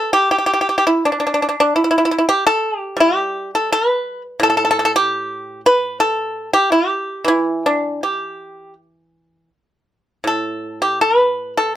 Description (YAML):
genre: chinese traditional, Chinese solo plucked strings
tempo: 83 BPM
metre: 4/4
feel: uneven beats, rubato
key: unclear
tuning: A4 = 440 Hz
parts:
  - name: pipa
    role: solo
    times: 0.0-11.8 s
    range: A2 to B4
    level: -15 LUFS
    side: equal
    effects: none
room: light reverb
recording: none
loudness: -15 LUFS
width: side -12 dB against mid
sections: 0.0-11.8 A section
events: none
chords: none